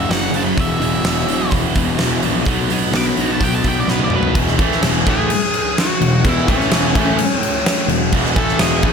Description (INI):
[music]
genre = quiet-loud alternative rock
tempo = 127 BPM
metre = 4/4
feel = straight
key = E major from 4.4 s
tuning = A4 = 440 Hz
[part]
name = octave-fuzz lead guitar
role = melody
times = 0.0-8.9 s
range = C#4 to D6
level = -22 LUFS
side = equal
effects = distortion, slapback echo, plate reverb
[part]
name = cranked stack guitar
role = riff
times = 0.0-8.9 s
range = E2 to B3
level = -22 LUFS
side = right 13 dB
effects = overdrive
[part]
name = thick fuzz guitar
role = riff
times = 0.0-8.9 s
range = E2 to B3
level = -22 LUFS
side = left 11 dB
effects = distortion
[part]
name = fuzz picked electric bass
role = bass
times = 0.0-8.9 s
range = E1 to B1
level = -22 LUFS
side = right 1 dB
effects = overdrive
[part]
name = huge arena drum kit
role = drums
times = 0.1-8.9 s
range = crash cymbal, hi-hat, kick drum, snare drum, toms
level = -18 LUFS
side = equal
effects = none
[part]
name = distorted electric guitar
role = riff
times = 4.3-8.9 s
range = E2 to A3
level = -24 LUFS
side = equal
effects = overdrive
[sound]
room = light reverb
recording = none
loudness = -14 LUFS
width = side -6 dB against mid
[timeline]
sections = 0.0-4.4 A section; 4.4-8.9 B section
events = lead electric guitar solo 0.0-4.4; drum fill 3.9-4.4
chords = 0.0 F#5; 0.6 E5; 2.5 B5; 4.4 E